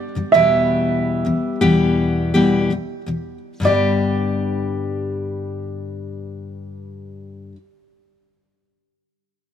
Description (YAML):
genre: acoustic pop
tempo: 82 BPM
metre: 4/4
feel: straight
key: G major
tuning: A4 = 440 Hz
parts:
  - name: warm upright piano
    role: melody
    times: 0.0-7.5 s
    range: D5 to E5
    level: -18 LUFS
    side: right 3 dB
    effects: none
  - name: picked steel-string acoustic guitar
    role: accompaniment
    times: 0.0-7.6 s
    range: E2 to G4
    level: -19 LUFS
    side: left 2 dB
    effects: none
room: light reverb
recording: none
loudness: -16 LUFS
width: side -9 dB against mid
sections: 0.0-3.6 A section; 3.6-6.6 B section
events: none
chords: 0.3 Em; 3.6 G